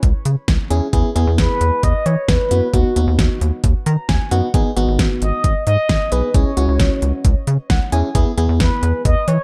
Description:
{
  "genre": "synth-pop",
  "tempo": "133 BPM",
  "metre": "4/4",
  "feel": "straight",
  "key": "unclear",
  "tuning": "A4 = 439 Hz",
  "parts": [
    { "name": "FM electric piano", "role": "accompaniment", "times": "0.0-9.1 s", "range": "B3 to A#5", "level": "-24 LUFS", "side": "equal", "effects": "chorus" },
    { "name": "rubbery square bass", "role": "bass", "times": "0.0-9.4 s", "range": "G#1 to E3", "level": "-20 LUFS", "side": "equal", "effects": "none" },
    { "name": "pop drum kit", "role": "drums", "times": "0.0-9.4 s", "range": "hi-hat, kick drum, snare drum", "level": "-20 LUFS", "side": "equal", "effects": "none" },
    { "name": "mellow horn-like synth lead", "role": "melody", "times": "1.4-9.4 s", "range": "F#4 to D#5", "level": "-24 LUFS", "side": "equal", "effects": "chorus, tape echo" }
  ],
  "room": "light reverb",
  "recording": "dark, warm production",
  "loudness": "-17 LUFS",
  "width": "mono",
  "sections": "0.0-9.4 A section",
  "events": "FM electric piano fill 3.6-4.5, 7.5-8.1",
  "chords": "0.0 C#m; 0.9 E; 2.7 B/D#; 4.5 G#m; 6.3 C#m; 8.1 E"
}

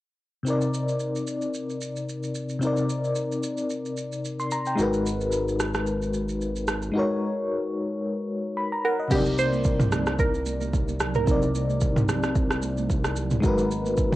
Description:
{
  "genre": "amapiano",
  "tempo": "111 BPM",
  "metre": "4/4",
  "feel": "swing 55% on 16ths",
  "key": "C minor",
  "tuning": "A4 = 440 Hz",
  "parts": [
    { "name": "FM electric piano with tremolo", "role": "accompaniment", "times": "0.4-14.2 s", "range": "C3 to C6", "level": "-26 LUFS", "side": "left 2 dB", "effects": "none" },
    { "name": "deep house drum kit", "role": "drums", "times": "0.5-14.2 s", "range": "crash cymbal, kick drum, rim click, shaker, toms", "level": "-27 LUFS", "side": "right 1 dB", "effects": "cassette tape" },
    { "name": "fat analog bass", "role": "bass", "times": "4.8-14.2 s", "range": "Ab1 to C2", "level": "-30 LUFS", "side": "right 1 dB", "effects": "none" },
    { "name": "soft round pluck", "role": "melody", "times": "8.8-12.7 s", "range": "G4 to C5", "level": "-27 LUFS", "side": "right 3 dB", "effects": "chorus, phaser, cassette tape, analog delay" },
    { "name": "congas", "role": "percussion", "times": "9.1-14.0 s", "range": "none", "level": "-35 LUFS", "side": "right 7 dB", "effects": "none" }
  ],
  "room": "light reverb, digital ambience",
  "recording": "home recording on cassette",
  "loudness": "-23 LUFS",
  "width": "side -16 dB against mid",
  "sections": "0.5-9.1 A section; 9.1-14.2 B section",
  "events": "none",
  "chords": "0.5 Cm9; 4.8 Abm9; 9.1 Cm9; 13.4 Abm9"
}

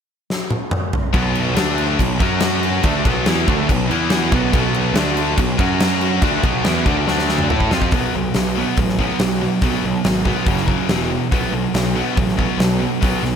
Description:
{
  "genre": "hard rock",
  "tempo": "142 BPM",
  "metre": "4/4",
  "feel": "straight",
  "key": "B minor",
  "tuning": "A4 = 440 Hz",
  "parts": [
    { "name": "huge arena drum kit", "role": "drums", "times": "0.3-13.3 s", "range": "crash cymbal, hi-hat, kick drum, snare drum, toms", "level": "-20 LUFS", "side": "equal", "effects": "none" },
    { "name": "heavy high-gain guitar", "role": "riff", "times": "1.1-13.4 s", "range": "E2 to A4", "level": "-22 LUFS", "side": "left 14 dB", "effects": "distortion" },
    { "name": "sludgy distorted guitar", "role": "riff", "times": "1.1-13.4 s", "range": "E2 to A4", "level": "-22 LUFS", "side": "right 10 dB", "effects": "overdrive" },
    { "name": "tight distorted guitar", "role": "riff", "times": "1.1-7.9 s", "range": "B2 to A4", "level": "-25 LUFS", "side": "equal", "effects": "distortion" },
    { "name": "fuzz picked electric bass", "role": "bass", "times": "1.1-13.4 s", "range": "E1 to A2", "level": "-23 LUFS", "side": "equal", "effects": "overdrive" }
  ],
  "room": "light reverb, small room ambience",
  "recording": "none",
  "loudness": "-16 LUFS",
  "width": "side -7 dB against mid",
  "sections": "0.0-1.1 A section; 1.1-7.9 B section; 7.9-13.4 C section",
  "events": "drum fill 0.3-1.1, 7.1-7.9",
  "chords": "0.0 N.C.; 1.1 B5; 1.6 D5; 2.0 B5; 2.2 F#5; 2.8 Bm; 3.9 E5; 4.3 B5; 5.0 D5; 5.4 B5; 5.6 F#5; 6.2 Bm; 7.1 D5; 7.5 Fmaj7; 7.9 B5; 10.5 F#5; 10.9 E5; 11.3 B5"
}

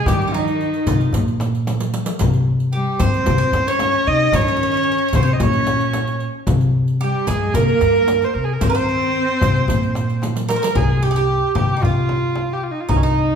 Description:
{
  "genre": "Turkish makam ensemble",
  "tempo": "112 BPM",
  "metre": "4/4",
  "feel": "straight",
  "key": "C makam kurdi",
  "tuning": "A4 = 439 Hz",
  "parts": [
    { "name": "clear kamancheh", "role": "melody", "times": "0.0-13.4 s", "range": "Db4 to Eb5", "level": "-21 LUFS", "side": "right 1 dB", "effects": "none" },
    { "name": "rich studio cello section", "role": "second line", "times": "0.0-10.2 s", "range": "Eb3 to Eb4", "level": "-24 LUFS", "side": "left 2 dB", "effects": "none" },
    { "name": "Greek bouzouki", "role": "second line", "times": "0.1-13.4 s", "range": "Db4 to Db5", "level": "-23 LUFS", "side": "right 6 dB", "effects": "none" },
    { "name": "upright bass", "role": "bass", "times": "0.1-13.4 s", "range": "C2 to Eb3", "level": "-20 LUFS", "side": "equal", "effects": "none" },
    { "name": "darbuka", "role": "percussion", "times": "0.1-13.4 s", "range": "none", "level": "-25 LUFS", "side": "left 2 dB", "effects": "none" },
    { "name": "frame drum", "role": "percussion", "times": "0.1-13.0 s", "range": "none", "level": "-25 LUFS", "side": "left 1 dB", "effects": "none" },
    { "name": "riq", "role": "percussion", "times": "0.1-10.8 s", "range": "none", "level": "-29 LUFS", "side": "equal", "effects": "none" }
  ],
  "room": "wet large studio reverb, RT60 1.3 s",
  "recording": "band playing live in one room",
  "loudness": "-16 LUFS",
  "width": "side -7 dB against mid",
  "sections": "0.0-10.8 A section; 10.8-13.4 B section",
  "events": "drum fill 1.7-2.2, 10.2-10.8",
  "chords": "none"
}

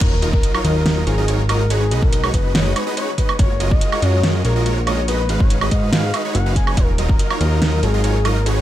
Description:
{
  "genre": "future bass",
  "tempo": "142 BPM",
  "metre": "4/4",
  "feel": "half-time",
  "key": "unclear",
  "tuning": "A4 = 440 Hz",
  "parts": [
    { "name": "soft octave-layered synth lead", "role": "melody", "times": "0.0-8.6 s", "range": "G#4 to G#5", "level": "-24 LUFS", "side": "left 2 dB", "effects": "chorus, sidechain pumping, ping-pong delay" },
    { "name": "supersaw chords", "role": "riff", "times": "0.0-8.6 s", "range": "F#3 to E#5", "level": "-24 LUFS", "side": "right 1 dB", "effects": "sidechain pumping" },
    { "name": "fat analog bass", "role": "bass", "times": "0.0-8.6 s", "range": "D#1 to G#2", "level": "-19 LUFS", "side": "equal", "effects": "sidechain pumping" },
    { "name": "electronic kick drum", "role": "drums", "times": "0.0-7.2 s", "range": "none", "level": "-17 LUFS", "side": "equal", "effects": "small room ambience" },
    { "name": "pop drum kit", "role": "drums", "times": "0.0-8.6 s", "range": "crash cymbal, hi-hat, snare drum, woodblock", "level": "-23 LUFS", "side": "right 2 dB", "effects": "small room ambience" },
    { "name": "sub drop", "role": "sound effects", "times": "0.0-1.7 s", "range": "none", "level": "-28 LUFS", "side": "equal", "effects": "none" }
  ],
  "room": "little or no reverb",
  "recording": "none",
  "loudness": "-15 LUFS",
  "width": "side -13 dB against mid",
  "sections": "0.0-8.6 A section",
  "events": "drop 0.0-8.6; impact 0.0-1.7",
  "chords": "0.0 D#m9; 1.7 B69; 3.4 F#maj9; 5.1 G#m7; 6.8 D#m9"
}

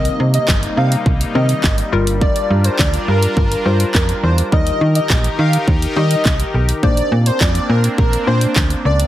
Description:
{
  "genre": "dance-pop",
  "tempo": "104 BPM",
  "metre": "4/4",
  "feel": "straight",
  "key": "C minor",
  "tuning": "A4 = 440 Hz",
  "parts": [
    { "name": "airy dreamy lead", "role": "melody", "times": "0.0-9.0 s", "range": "Bb4 to F5", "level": "-21 LUFS", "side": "equal", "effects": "chorus, sidechain pumping, ping-pong delay" },
    { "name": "hollow square pluck", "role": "accompaniment", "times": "0.0-8.7 s", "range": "Eb3 to C5", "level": "-23 LUFS", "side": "left 5 dB", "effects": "chorus, sidechain pumping" },
    { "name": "sweeping resonant pad", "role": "sustained chords", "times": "0.0-9.1 s", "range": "C3 to Bb4", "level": "-23 LUFS", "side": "left 1 dB", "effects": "chorus, sidechain pumping" },
    { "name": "slap-like FM bass", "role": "bass", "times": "0.0-9.0 s", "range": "G1 to Eb3", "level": "-16 LUFS", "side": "equal", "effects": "sidechain pumping" },
    { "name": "pop drum kit", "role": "drums", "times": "0.1-9.1 s", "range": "handclaps, hi-hat, kick drum, snare drum", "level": "-17 LUFS", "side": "equal", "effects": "none" }
  ],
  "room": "little or no reverb",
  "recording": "heavily compressed radio sound",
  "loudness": "-13 LUFS",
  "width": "side -13 dB against mid",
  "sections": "0.0-9.1 A section",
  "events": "none",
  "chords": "0.0 Cm7; 1.9 Gm7; 4.5 Eb; 6.8 Bbadd9"
}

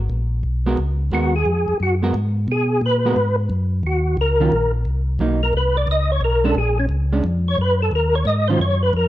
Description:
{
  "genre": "jazz",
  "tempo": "177 BPM",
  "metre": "4/4",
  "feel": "swing 65% on 8ths",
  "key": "Eb minor",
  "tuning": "A4 = 440 Hz",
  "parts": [
    { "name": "mellow tonewheel organ", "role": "bass", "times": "0.0-9.1 s", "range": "Bb1 to Cb3", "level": "-20 LUFS", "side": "equal", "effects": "slow rotary speaker" },
    { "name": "hollow-body jazz guitar", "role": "accompaniment", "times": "0.7-8.6 s", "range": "Eb3 to Bb4", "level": "-23 LUFS", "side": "right 3 dB", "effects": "none" },
    { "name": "percussive tonewheel organ", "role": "melody", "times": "1.1-9.1 s", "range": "C#4 to D#5", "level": "-20 LUFS", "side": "equal", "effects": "slow rotary speaker, chorus vibrato" }
  ],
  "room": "light reverb",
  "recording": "none",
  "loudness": "-17 LUFS",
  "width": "side -14 dB against mid",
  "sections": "0.0-9.1 A section",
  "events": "tonewheel organ solo 0.0-9.1",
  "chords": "0.0 Abm9; 3.8 Ebm7; 5.2 Bmaj7; 6.6 Bbm7; 7.9 Ebm9"
}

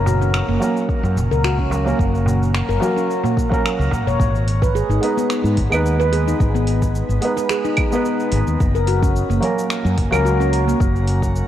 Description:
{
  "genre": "organic downtempo",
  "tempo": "109 BPM",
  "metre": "4/4",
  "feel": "swing 53% on 16ths",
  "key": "G# minor",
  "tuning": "A4 = 440 Hz",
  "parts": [
    { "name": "felt-muted upright piano", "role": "accompaniment", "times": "0.0-11.5 s", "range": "F#3 to B4", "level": "-23 LUFS", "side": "right 2 dB", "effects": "sidechain pumping, tape echo, shimmer reverb" },
    { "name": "mellow fretless electric bass", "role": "bass", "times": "0.0-11.4 s", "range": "E1 to G#2", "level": "-19 LUFS", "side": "equal", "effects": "tube saturation, analog chorus, sidechain pumping" },
    { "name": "quartz singing bowl", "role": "texture", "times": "0.0-4.2 s", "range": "C#5", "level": "-41 LUFS", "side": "left 2 dB", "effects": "none" },
    { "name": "handpan", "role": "arpeggios", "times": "0.1-10.8 s", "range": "A#3 to C#5", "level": "-22 LUFS", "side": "left 1 dB", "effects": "tape echo, shimmer reverb" },
    { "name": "afro-pop drum kit", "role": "drums", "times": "0.1-11.5 s", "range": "claves, finger snaps, hi-hat, shaker", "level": "-28 LUFS", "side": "right 1 dB", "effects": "overdrive, small room reverb" },
    { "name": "darbuka", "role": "percussion", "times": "0.1-4.2 s", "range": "none", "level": "-27 LUFS", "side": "right 2 dB", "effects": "none" },
    { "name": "electronic kick drum", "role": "drums", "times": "0.9-11.3 s", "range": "none", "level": "-21 LUFS", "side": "equal", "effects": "overdrive, small room reverb" }
  ],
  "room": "light reverb, small room ambience",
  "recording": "worn, warbling old tape, cassette tape, warbly pitch drift",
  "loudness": "-16 LUFS",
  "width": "side -11 dB against mid",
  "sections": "0.0-4.2 A section; 4.2-11.5 B section",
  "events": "none",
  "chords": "0.0 F#; 4.2 G#m; 8.6 F#"
}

